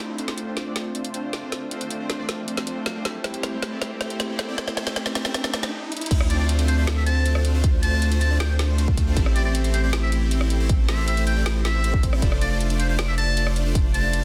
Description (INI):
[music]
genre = future bass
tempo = 157 BPM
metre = 4/4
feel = half-time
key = unclear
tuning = A4 = 440 Hz
[part]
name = ethereal airy pad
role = sustained chords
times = 1.1-6.1 s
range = A3 to C5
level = -43 LUFS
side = equal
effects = none
[part]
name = big bright polysynth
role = riff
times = 0.0-14.2 s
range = A3 to F5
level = -31 LUFS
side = equal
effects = lush chorus, sidechain pumping
[part]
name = riser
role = sound effects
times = 0.0-6.1 s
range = none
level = -39 LUFS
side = equal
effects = none
[part]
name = trap drum kit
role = drums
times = 0.2-14.2 s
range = crash cymbal, hi-hat, rim click, snare drum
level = -31 LUFS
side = equal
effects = none
[part]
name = saturated sub bass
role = bass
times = 6.1-14.2 s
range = F1 to D2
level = -24 LUFS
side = equal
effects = sidechain pumping
[part]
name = electronic kick drum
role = drums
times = 6.1-13.8 s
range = none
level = -24 LUFS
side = equal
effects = none
[part]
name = trumpet with metal mute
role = melody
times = 6.3-14.2 s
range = C5 to A5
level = -31 LUFS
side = equal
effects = sidechain pumping, digital delay
[sound]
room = light reverb, digital ambience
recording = dense, heavily limited modern master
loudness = -23 LUFS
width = mono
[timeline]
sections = 0.0-6.1 A section; 6.1-14.2 B section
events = build-up 0.0-6.1; drum fill 0.0-5.7, 5.9; riser 0.0-6.1; filter sweep on analog polysynth 0.0-6.1; break 5.7-6.1; drop 6.1-14.2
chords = 0.0 Dm7; 3.1 Am7; 6.1 Dm7; 9.2 Am7; 12.2 F6